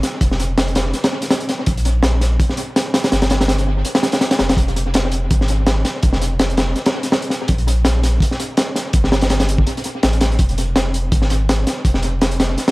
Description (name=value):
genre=drum and bass, jungle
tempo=165 BPM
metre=4/4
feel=swing 55% on 16ths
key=F minor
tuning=A4 = 441 Hz
part: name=crunchy breakbeat drum kit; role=drums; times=0.0-12.7 s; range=hi-hat, kick drum, snare drum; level=-16 LUFS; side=equal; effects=dub echo
part: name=saturated sub bass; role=bass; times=0.2-12.6 s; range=F1 to Bb1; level=-18 LUFS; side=equal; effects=none
room=light reverb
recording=echo-heavy mix, vinyl crackle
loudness=-15 LUFS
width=side -21 dB against mid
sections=0.0-12.7 A section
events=none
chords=none